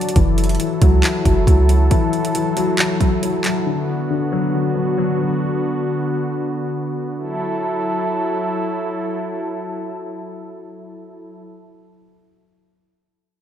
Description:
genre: hip hop, trap.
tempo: 137 BPM.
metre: 4/4.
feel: half-time.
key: F# minor.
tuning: A4 = 440 Hz.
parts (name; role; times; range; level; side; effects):
dark concert grand piano; accompaniment; 0.0-6.3 s; D3 to F#3; -21 LUFS; left 4 dB; low-pass filter.
warm analog pad; sustained chords; 0.0-11.4 s; D3 to A5; -22 LUFS; equal; chorus.
trap drum kit; drums; 0.0-3.6 s; handclaps, hi-hat, kick drum; -18 LUFS; right 1 dB; none.
clean 808-style bass; bass; 0.2-1.9 s; F#1 to C#2; -15 LUFS; right 1 dB; none.
room: light reverb.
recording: none.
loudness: -17 LUFS.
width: side -10 dB against mid.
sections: 0.2-7.2 A section; 7.2-10.7 B section.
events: none.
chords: 0.2 F#m7; 3.7 D6; 7.2 F#m7.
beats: | 0.16 0.60 1.03 1.47 | 1.91 2.35 2.79 3.22 | 3.66 4.10 4.54 4.98 | 5.41 5.85 6.29 6.73 | 7.17 7.60 8.04 8.48 | 8.92 9.36 9.79 10.23.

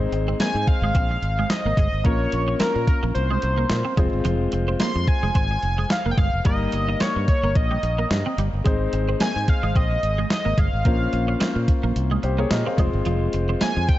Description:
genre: 1980s-style pop.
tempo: 109 BPM.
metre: 4/4.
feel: swing 55% on 16ths.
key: Ab major.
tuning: A4 = 441 Hz.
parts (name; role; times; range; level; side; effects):
clear grand piano; accompaniment; 0.0-14.0 s; G3 to F5; -28 LUFS; left 3 dB; none.
modern bright fingered electric bass; bass; 0.0-13.9 s; F1 to Bb2; -24 LUFS; equal; none.
twelve-string electric guitar; riff; 0.1-13.8 s; F3 to Eb4; -30 LUFS; right 4 dB; ensemble chorus.
clean 12-bit digital drum machine; drums; 0.1-14.0 s; hi-hat, kick drum, snare drum; -22 LUFS; equal; none.
octave-doubled lead; melody; 0.4-14.0 s; Bb4 to C6; -26 LUFS; equal; chorus.
room: light reverb.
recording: dark, warm production, nothing above 7.9 kHz.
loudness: -19 LUFS.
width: side -15 dB against mid.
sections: 0.0-14.0 A section.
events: none.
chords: 0.0 Ab; 2.0 Bbmadd9; 4.0 Fm; 6.5 Eb/G; 8.7 Ab; 10.9 Bbmadd9; 12.8 Fm.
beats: 0.40 0.95 1.50 | 2.05 2.60 3.15 3.70 | 4.25 4.80 5.35 5.90 | 6.45 7.00 7.55 8.11 | 8.65 9.21 9.76 10.31 | 10.86 11.41 11.96 12.51 | 13.06 13.61.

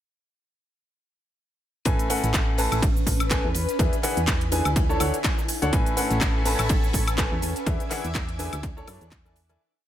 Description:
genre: piano house.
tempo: 124 BPM.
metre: 4/4.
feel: swing 56% on 16ths.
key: A major.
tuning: A4 = 441 Hz.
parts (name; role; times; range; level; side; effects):
bright upright piano; riff; 1.9-9.6 s; A2 to A5; -28 LUFS; left 1 dB; sidechain pumping, digital delay.
solid FM bass; bass; 1.9-9.6 s; A1 to F#2; -27 LUFS; equal; sidechain pumping.
deep reggae drum kit; drums; 1.9-9.6 s; hi-hat, ride cymbal, snare drum; -38 LUFS; left 2 dB; sidechain pumping on cymbals, high-pass filter on cymbals, sidechain pumping on hats, high-pass filter on hats, high-pass filter on snare, high-pass filter on room.
electronic kick drum; drums; 1.9-9.2 s; none; -25 LUFS; equal; overdrive.
house drum kit; drums; 1.9-9.6 s; handclaps, hi-hat, shaker, woodblock; -29 LUFS; equal; none.
granular cloud pad; texture; 2.7-9.6 s; B4 to G#5; -33 LUFS; left 1 dB; built-in reverb, sidechain pumping.
analog string pad; sustained chords; 5.7-9.6 s; A4 to A6; -34 LUFS; equal; ensemble chorus, sidechain pumping.
room: small room reverb.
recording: none.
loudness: -21 LUFS.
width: side -11 dB against mid.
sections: 1.9-9.6 drop.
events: drop 1.9-9.6; fade-out 7.0-9.6.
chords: 1.9 Amaj9; 3.6 E7; 4.8 Dmaj7; 5.7 Amaj9; 7.4 E7; 8.6 Dmaj7; 9.1 E9sus4.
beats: | 1.86 2.34 2.83 3.31 | 3.79 4.28 4.76 5.24 | 5.73 6.21 6.70 7.18 | 7.66 8.15 8.63 9.12.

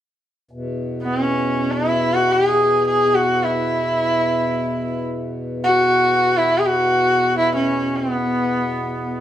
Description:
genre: indian classical, Hindustani.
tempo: free time.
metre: none.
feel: none.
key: E raga bhupali.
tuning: A4 = 440 Hz.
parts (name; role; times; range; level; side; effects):
pedal harmonium; drone; 0.5-9.2 s; E2 to B2; -25 LUFS; left 1 dB; none.
rich sarangi; melody; 1.0-9.1 s; B3 to G#4; -17 LUFS; equal; none.
room: wet stone room reverb, RT60 0.9 s.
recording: band playing live in one room.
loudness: -16 LUFS.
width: side -11 dB against mid.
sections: 0.5-9.2 A section.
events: none.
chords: none.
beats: free time.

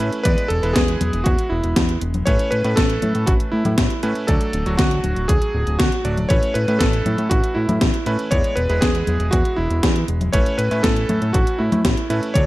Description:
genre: italo disco.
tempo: 119 BPM.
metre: 4/4.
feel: straight.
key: A major.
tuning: A4 = 441 Hz.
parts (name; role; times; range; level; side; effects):
bright electric grand piano; stabs; 0.0-12.5 s; F#3 to D5; -27 LUFS; right 2 dB; none.
fat analog bass; bass; 0.0-12.5 s; D1 to A2; -21 LUFS; equal; none.
gated 80s digital drum machine; drums; 0.0-12.5 s; congas, hi-hat, snare drum; -23 LUFS; left 1 dB; gated reverb, gated reverb snare, overdrive.
clear electric grand piano; melody; 0.2-12.5 s; E4 to C#5; -23 LUFS; right 1 dB; tape echo.
electronic kick drum; drums; 0.3-12.5 s; none; -20 LUFS; equal; none.
room: little or no reverb.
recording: dry, close 1970s-style studio recording.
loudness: -16 LUFS.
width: side -17 dB against mid.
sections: 0.0-12.5 A section.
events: none.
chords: 0.3 E; 2.3 Aadd9; 4.3 D; 6.3 Aadd9; 8.3 E; 10.3 Aadd9.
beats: | 0.25 0.76 1.26 1.76 | 2.27 2.77 3.28 3.78 | 4.29 4.79 5.29 5.80 | 6.30 6.81 7.31 7.82 | 8.32 8.82 9.33 9.83 | 10.34 10.84 11.34 11.85 | 12.35.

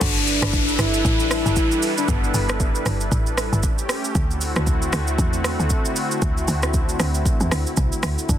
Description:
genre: amapiano.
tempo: 116 BPM.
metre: 4/4.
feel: swing 58% on 16ths.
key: G major.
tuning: A4 = 437 Hz.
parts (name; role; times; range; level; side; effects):
soft octave-layered synth lead; melody; 0.0-3.1, 8.3-8.4 s; B3 to E4; -24 LUFS; left 1 dB; chorus, digital delay.
warm analog pad; sustained chords; 0.0-8.4 s; D3 to B4; -26 LUFS; equal; chorus, sidechain pumping.
woody log drum bass; bass; 0.0-8.4 s; G1 to E2; -23 LUFS; equal; none.
afro-pop drum kit; drums; 0.0-8.4 s; crash cymbal, hi-hat, kick drum, rim click, shaker; -22 LUFS; equal; soft clipping on snare.
downlifter; sound effects; 0.0-4.2 s; none; -27 LUFS; left 2 dB; none.
room: little or no reverb.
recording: dense, heavily limited modern master.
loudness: -18 LUFS.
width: side -11 dB against mid.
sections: 0.0-8.4 A section.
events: drop 0.0-8.4.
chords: 0.0 G6; 3.6 A7; 4.2 D9.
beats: | 0.01 0.53 1.05 1.56 | 2.08 2.60 3.12 3.63 | 4.15 4.67 5.19 5.70 | 6.22 6.74 7.25 7.77 | 8.29.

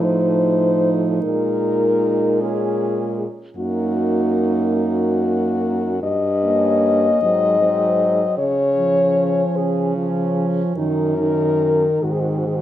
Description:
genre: classical, lyrical piece for horn quartet.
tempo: 50 BPM (dotted quarters).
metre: 6/8.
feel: uneven beats, rubato.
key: unclear.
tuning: A4 = 438 Hz.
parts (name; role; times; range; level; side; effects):
warm French horn; melody; 0.0-12.6 s; Gb4 to Eb5; -19 LUFS; left 4 dB; none.
warm French horn; second line; 0.0-12.6 s; C4 to Eb4; -24 LUFS; right 6 dB; none.
mellow French horn; accompaniment; 0.0-12.6 s; Eb3 to Bb3; -23 LUFS; equal; none.
warm French horn; bass; 0.0-12.6 s; Gb2 to Db3; -24 LUFS; right 2 dB; none.
room: wet recital hall reverb, RT60 1.3 s.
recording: none.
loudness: -16 LUFS.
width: side -12 dB against mid.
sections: 0.0-12.6 A section.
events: none.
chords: 0.0 F7/A; 1.2 Bbm7; 3.6 Ebm/Gb; 6.0 Eb7/G; 7.2 Ab7; 8.4 Db; 10.8 Ebm/Gb; 12.0 Ab.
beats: 0.02 | 1.24 2.40 | 3.57 4.75 | 6.03 7.22 | 8.38 9.56 | 10.76 12.03.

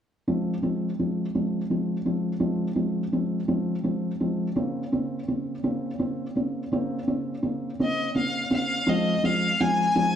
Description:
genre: pop.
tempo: 56 BPM (dotted quarters).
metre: 6/8.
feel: straight.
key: Ab major.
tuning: A4 = 443 Hz.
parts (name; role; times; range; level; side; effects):
felt-muted upright piano; accompaniment; 0.3-10.2 s; Db3 to C4; -25 LUFS; equal; none.
rich violin; melody; 7.8-10.2 s; Eb5 to Ab5; -24 LUFS; left 2 dB; none.
room: wet large studio reverb, RT60 1.2 s.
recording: band playing live in one room.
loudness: -24 LUFS.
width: side -9 dB against mid.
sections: 0.3-8.9 A section; 8.9-10.2 B section.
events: none.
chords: 0.3 Ab6; 4.6 Bbmadd9; 8.9 Ab6.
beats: | 0.27 1.34 | 2.42 3.49 | 4.57 5.64 | 6.72 7.80 | 8.87 9.95.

